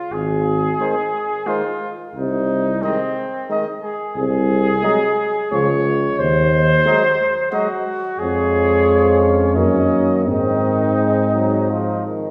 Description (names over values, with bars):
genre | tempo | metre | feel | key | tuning
classical, brass quintet | 89 BPM | 3/4 | rubato | Ab major | A4 = 444 Hz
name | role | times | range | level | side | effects
warm trumpet | second line | 0.0-12.0 s | C4 to Db5 | -23 LUFS | equal | none
warm tuba | bass | 0.1-12.1 s | Ab1 to Ab2 | -22 LUFS | equal | none
warm trumpet | melody | 0.8-12.0 s | C5 to Eb5 | -28 LUFS | equal | none
brilliant trombone | accompaniment | 0.8-12.3 s | Eb3 to Ab3 | -29 LUFS | equal | none
mellow French horn | accompaniment | 0.8-12.1 s | Ab3 to C4 | -25 LUFS | equal | none
room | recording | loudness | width
wet recital hall reverb, RT60 1.7 s | heard from further back in the room | -18 LUFS | mono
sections
0.0-12.3 A section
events
none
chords
0.1 Ab5; 2.1 Ab/C; 5.5 Db; 6.2 Ab7/Eb; 8.2 Db/F; 9.6 Ebm7/Gb; 10.3 Ab